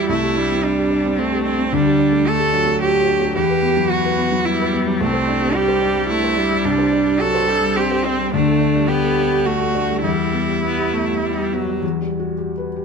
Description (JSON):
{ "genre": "neoclassical piano and strings", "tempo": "99-112 BPM", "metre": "3/4", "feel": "rubato", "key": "E minor", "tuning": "A4 = 440 Hz", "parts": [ { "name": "clear cello", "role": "second line", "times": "0.0-11.5 s", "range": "C4 to A4", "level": "-19 LUFS", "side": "right 3 dB", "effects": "none" }, { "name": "clear viola", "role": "accompaniment", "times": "0.0-11.8 s", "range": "E3 to C4", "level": "-24 LUFS", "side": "left 1 dB", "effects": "none" }, { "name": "felt-muted upright piano", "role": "accompaniment", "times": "0.0-12.8 s", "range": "C2 to C5", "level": "-20 LUFS", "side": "left 2 dB", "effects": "none" } ], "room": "light reverb", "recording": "close, detailed microphones", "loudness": "-16 LUFS", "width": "side -5 dB against mid", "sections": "0.0-11.8 A section; 11.8-12.8 B section", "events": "none", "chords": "0.1 Csus2; 1.7 Gsus2/D; 3.4 Emadd9; 5.0 Csus2; 8.3 Gsus2/D; 10.0 Em; 11.8 Emadd9" }